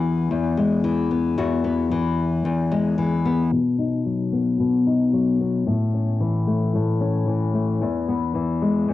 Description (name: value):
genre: folktronica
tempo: 112 BPM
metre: 4/4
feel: swing 56% on 16ths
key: E major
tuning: A4 = 440 Hz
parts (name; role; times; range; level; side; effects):
- nylon-string guitar; solo; 0.0-8.9 s; E2 to F#4; -19 LUFS; left 2 dB; cassette tape
room: wet studio reverb, RT60 0.6 s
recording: home recording on cassette, low-pass filter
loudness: -19 LUFS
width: side -14 dB against mid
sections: 0.0-3.5 A section; 3.5-8.9 B section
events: filter sweep 3.5-8.9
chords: 0.0 Eadd9; 3.5 B; 5.7 A; 7.8 E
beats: 0.31 0.84 | 1.38 1.92 2.45 2.99 | 3.52 4.06 4.59 5.13 | 5.67 6.20 6.74 7.27 | 7.81 8.35 8.88